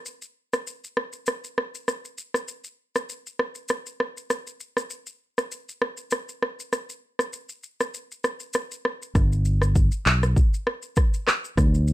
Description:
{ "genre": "afrobeats", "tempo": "99 BPM", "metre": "4/4", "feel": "swing 55% on 16ths", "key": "unclear", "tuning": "A4 = 442 Hz", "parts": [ { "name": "deep house drum kit", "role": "drums", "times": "0.1-11.9 s", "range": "handclaps, kick drum, rim click, shaker", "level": "-24 LUFS", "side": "equal", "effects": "none" }, { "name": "fingered electric bass", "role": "bass", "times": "9.2-11.9 s", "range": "G1 to D2", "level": "-21 LUFS", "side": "equal", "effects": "none" } ], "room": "light reverb", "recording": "none", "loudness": "-24 LUFS", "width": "side -16 dB against mid", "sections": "0.0-9.2 A section; 9.2-11.9 B section", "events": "none", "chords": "none" }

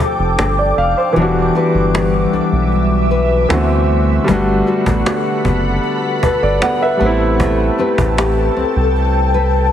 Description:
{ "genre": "contemporary R&B", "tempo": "77 BPM", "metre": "4/4", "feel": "straight", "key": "G major", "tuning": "A4 = 440 Hz", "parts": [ { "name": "warm grand piano", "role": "accompaniment", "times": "0.0-9.7 s", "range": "E3 to F#5", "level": "-18 LUFS", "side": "right 1 dB", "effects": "none" }, { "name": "ethereal airy pad", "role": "sustained chords", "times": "0.0-9.7 s", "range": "G3 to D6", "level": "-20 LUFS", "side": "left 1 dB", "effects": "ensemble chorus, built-in reverb, phaser" }, { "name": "nylon-string guitar", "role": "arpeggios", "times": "0.0-9.7 s", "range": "D3 to B4", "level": "-19 LUFS", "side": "left 4 dB", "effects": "digital delay" }, { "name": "cajon", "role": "drums", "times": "0.0-9.1 s", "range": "none", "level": "-21 LUFS", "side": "equal", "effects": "none" }, { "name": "round analog bass", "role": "bass", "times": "0.2-9.7 s", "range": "E1 to D2", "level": "-17 LUFS", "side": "equal", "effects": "none" } ], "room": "light reverb", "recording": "heavily compressed radio sound, multiband compression", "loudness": "-12 LUFS", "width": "side -10 dB against mid", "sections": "0.0-9.7 A section", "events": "kick muted 1.2-2.7; grand piano fill 6.2-7.4", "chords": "0.0 F69; 1.2 Em7; 3.5 D13; 4.3 Gmaj9; 7.0 Am9" }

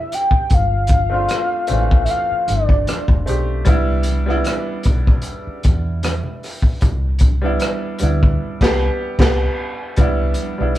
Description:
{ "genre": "R&B, neo-soul", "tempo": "76 BPM", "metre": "4/4", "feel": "swing 53% on 16ths", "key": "C major", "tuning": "A4 = 442 Hz", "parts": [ { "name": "warm velvety synth lead", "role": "melody", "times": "0.0-3.3 s", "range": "D5 to G5", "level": "-19 LUFS", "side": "left 1 dB", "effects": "chorus" }, { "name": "clear baby grand piano", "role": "accompaniment", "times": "0.0-10.8 s", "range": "E3 to G4", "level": "-23 LUFS", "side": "right 1 dB", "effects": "none" }, { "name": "crunchy breakbeat drum kit", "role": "drums", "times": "0.1-10.8 s", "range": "crash cymbal, hi-hat, kick drum, rim click, snare drum", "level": "-17 LUFS", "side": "equal", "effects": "none" }, { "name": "congas", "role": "percussion", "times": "0.1-10.6 s", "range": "none", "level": "-32 LUFS", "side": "equal", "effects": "none" }, { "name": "woody fretless electric bass", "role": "bass", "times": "0.5-10.8 s", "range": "F1 to E2", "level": "-20 LUFS", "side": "equal", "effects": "none" } ], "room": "moderate small room reverb, RT60 0.5 s", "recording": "band playing live in one room", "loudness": "-15 LUFS", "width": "side -14 dB against mid", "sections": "0.0-10.0 A section", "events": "band accent 8.4-10.0", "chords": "0.0 Cmaj9 (rootless); 0.5 G9sus4; 3.7 Cmaj9" }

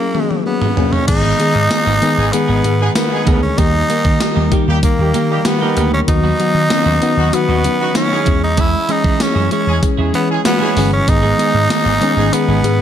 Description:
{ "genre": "1980s-style pop", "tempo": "96 BPM", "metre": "4/4", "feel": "straight", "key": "unclear", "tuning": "A4 = 439 Hz", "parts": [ { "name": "raspy tenor saxophone", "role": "melody", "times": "0.0-12.8 s", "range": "A#3 to E4", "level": "-18 LUFS", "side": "equal", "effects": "digital delay" }, { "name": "mellow FM electric piano", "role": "accompaniment", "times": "0.0-12.8 s", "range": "D#3 to A#4", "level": "-18 LUFS", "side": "left 4 dB", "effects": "chorus" }, { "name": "gated 80s digital drum machine", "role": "drums", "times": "0.1-12.8 s", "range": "crash cymbal, hi-hat, kick drum, snare drum, tambourine, toms", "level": "-18 LUFS", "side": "right 1 dB", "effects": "gated reverb, gated reverb snare" }, { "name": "twelve-string electric guitar", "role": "riff", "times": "1.1-12.7 s", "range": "D#3 to G#4", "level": "-24 LUFS", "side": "right 8 dB", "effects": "lush chorus, digital delay" }, { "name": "vintage slap bass", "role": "bass", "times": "1.1-12.8 s", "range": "G1 to E3", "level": "-17 LUFS", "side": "right 1 dB", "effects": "none" }, { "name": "warm horn section", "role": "stabs", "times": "2.2-12.6 s", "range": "F#3 to A#4", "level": "-24 LUFS", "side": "right 3 dB", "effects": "none" } ], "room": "light reverb", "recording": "none", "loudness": "-12 LUFS", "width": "side -9 dB against mid", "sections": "0.0-1.1 A section; 1.1-12.8 B section", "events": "break 0.0-1.1; drum fill 0.0-1.1", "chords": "0.0 F#add9; 1.1 G#m; 3.6 D#; 6.1 B/D#; 8.3 C#m/E; 11.1 G#m" }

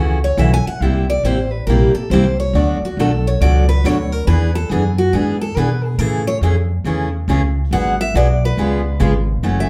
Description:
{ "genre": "acoustic string swing (jazz manouche)", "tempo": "139 BPM", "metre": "4/4", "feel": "swing 64% on 8ths", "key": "unclear", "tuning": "A4 = 440 Hz", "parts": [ { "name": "picked steel-string acoustic guitar", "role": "accompaniment", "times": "0.0-9.7 s", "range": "B2 to G#4", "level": "-22 LUFS", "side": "equal", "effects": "none" }, { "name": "upright bass", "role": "bass", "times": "0.0-9.7 s", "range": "F#1 to B2", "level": "-19 LUFS", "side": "equal", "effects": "none" }, { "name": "picked steel-string acoustic guitar", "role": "melody", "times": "0.2-9.7 s", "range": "F#4 to G#5", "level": "-24 LUFS", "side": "equal", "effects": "none" } ], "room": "wet club reverb, RT60 0.8 s", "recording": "heard from further back in the room", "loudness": "-16 LUFS", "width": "mono", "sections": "0.0-9.7 A section", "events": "steel-string acoustic guitar solo 0.0-9.7", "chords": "0.0 F#m7; 0.8 C7; 2.5 Bm7; 4.3 E7; 6.0 Amaj7; 7.7 G#m7b5; 8.6 C#7" }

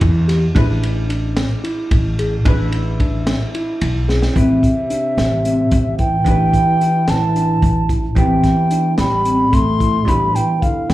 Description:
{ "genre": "progressive instrumental, band music in an uneven meter", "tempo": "221 BPM (eighths)", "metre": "7/8", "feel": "straight", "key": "A minor", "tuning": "A4 = 440 Hz", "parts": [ { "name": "hollow-body jazz guitar", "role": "accompaniment", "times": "0.0-10.9 s", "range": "B3 to B4", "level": "-28 LUFS", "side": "equal", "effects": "double-tracked left and right, slapback echo" }, { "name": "mellow tine electric piano", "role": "arpeggios", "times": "0.0-10.9 s", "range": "C4 to G#4", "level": "-22 LUFS", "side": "left 1 dB", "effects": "slapback echo, tape echo" }, { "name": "upright bass", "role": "bass", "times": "0.0-10.9 s", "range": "A1 to E2", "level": "-18 LUFS", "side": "equal", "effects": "none" }, { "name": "crunchy breakbeat drum kit", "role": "drums", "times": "0.0-10.9 s", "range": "hi-hat, kick drum, ride cymbal, snare drum", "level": "-20 LUFS", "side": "equal", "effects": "none" }, { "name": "baroque flute", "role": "melody", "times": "4.4-10.9 s", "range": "E5 to C6", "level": "-19 LUFS", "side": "equal", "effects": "slapback echo" }, { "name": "breathy trombone", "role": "second line", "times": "4.4-10.9 s", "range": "C3 to A3", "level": "-20 LUFS", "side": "right 1 dB", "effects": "slapback echo" } ], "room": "light reverb", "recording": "live gig heard through the venue's PA, club ambience", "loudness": "-14 LUFS", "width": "side -15 dB against mid", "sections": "0.0-4.4 A section; 4.4-10.9 B section", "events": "drum fill 4.1", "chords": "0.0 Am7 (rootless); 0.6 E7/A; 4.4 Am7; 6.3 Em/A; 8.2 Am7; 10.1 Em/A" }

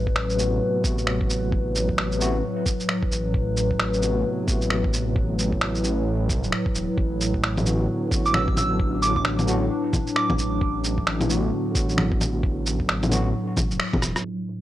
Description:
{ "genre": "future garage", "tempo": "132 BPM", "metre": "4/4", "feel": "swing 61% on 16ths", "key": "unclear", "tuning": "A4 = 439 Hz", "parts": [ { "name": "warbly tape-like pad", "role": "sustained chords", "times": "0.0-14.6 s", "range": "A2 to B4", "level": "-26 LUFS", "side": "left 1 dB", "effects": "chorus, built-in reverb, vintage 12-bit sampler grit, sidechain pumping" }, { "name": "swelling detuned saw bass", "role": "bass", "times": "0.0-14.2 s", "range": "E1 to C2", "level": "-26 LUFS", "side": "equal", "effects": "tube saturation, sidechain pumping" }, { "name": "electronic kick drum", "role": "drums", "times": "0.1-14.0 s", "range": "none", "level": "-25 LUFS", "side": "equal", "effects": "none" }, { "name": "electronic finger snaps, shaker, bongos and rim click", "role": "drums", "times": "0.2-14.6 s", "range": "none", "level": "-25 LUFS", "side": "equal", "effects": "low-pass filter on perc, low-pass filter on snare" }, { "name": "overdriven tine electric piano", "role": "accompaniment", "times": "0.4-13.3 s", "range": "C3 to F#4", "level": "-30 LUFS", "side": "equal", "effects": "fast tremolo, sidechain pumping, low-pass filter, tape echo" }, { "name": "soft synth bell", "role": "melody", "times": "8.3-10.8 s", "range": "D6 to E6", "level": "-26 LUFS", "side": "right 3 dB", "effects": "chorus, vintage 12-bit sampler grit, tape echo" } ], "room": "light reverb", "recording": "dry, gritty hardware recording, cassette tape, low-pass filter", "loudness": "-21 LUFS", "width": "side -14 dB against mid", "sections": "0.0-14.2 A section", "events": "band accent 13.8; drum fill 14.0", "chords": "0.0 Am69; 7.0 Bm/A" }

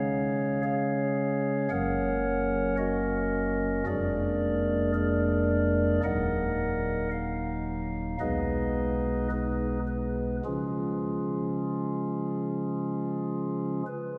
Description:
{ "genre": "classical, chorale-style piece for pipe organ", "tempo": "52-56 BPM", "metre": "4/4", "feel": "straight", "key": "unclear", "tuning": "A4 = 440 Hz", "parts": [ { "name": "pipe organ, stopped flute", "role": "solo", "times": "0.0-14.2 s", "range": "D#1 to F#5", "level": "-29 LUFS", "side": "equal", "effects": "none" } ], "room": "wet church reverb, RT60 3.5 s", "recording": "heard from further back in the room", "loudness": "-29 LUFS", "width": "mono", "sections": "0.0-14.2 A section", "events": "none", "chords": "0.0 C#; 1.7 F#; 3.9 A#7/E#; 6.0 D#m; 8.2 G#m/B; 10.5 C#" }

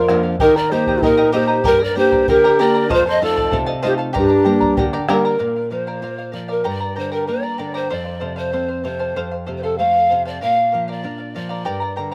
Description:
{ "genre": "andean folk, Andean ensemble", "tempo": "96 BPM", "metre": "2/4", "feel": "straight", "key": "unclear", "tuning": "A4 = 440 Hz", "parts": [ { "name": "breathy mellow pan flute", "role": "melody", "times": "0.0-11.9 s", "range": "G4 to F5", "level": "-21 LUFS", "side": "equal", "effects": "slapback echo" }, { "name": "breathy reedy large quena", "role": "second line", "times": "0.0-5.1 s", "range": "D4 to C5", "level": "-22 LUFS", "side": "equal", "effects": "slapback echo" }, { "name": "charango", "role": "accompaniment", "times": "0.0-12.1 s", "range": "G4 to Bb5", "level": "-27 LUFS", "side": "equal", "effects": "slapback echo" }, { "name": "nylon-string guitar", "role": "accompaniment", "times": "0.0-12.1 s", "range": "F2 to G4", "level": "-25 LUFS", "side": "equal", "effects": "none" }, { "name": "bombo", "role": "percussion", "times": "0.1-5.2 s", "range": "none", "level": "-28 LUFS", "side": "equal", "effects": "none" } ], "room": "little or no reverb", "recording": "recorded outdoors, with no room sound", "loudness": "-18 LUFS", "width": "mono", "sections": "0.0-5.4 A section; 5.4-12.1 B section", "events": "none", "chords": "0.4 Eb; 1.7 Gm; 2.9 F7; 4.2 Gm; 5.4 Bb; 6.7 Gm; 7.9 F; 10.4 Bb" }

